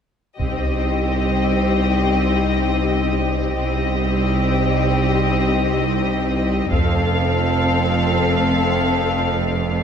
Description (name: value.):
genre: cinematic, epic orchestral film score.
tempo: free time.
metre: none.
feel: none.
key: C dorian.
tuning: A4 = 439 Hz.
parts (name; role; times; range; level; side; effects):
rich symphonic violin section; melody; 0.4-9.8 s; Eb5 to F5; -25 LUFS; left 3 dB; none.
warm symphonic violin section; second line; 0.4-9.8 s; G4 to A4; -25 LUFS; left 4 dB; none.
clear symphonic viola section; accompaniment; 0.4-9.8 s; C4; -26 LUFS; right 1 dB; none.
dark French horn section; sustained chords; 0.4-9.7 s; G3 to Eb4; -25 LUFS; left 7 dB; none.
rich studio cello section; bass; 0.4-9.8 s; C2 to F2; -23 LUFS; right 2 dB; none.
rich symphonic double bass section; bass; 0.4-9.8 s; F1 to C2; -23 LUFS; right 4 dB; none.
taiko ensemble; drums; 0.4-1.4, 6.7-7.7 s; none; -24 LUFS; equal; none.
room: moderate scoring stage reverb, RT60 1.5 s.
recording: none.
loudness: -16 LUFS.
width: side -7 dB against mid.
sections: 0.4-9.8 A section.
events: build-up 0.4-9.8.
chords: 0.4 Cm; 6.7 F.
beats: free time.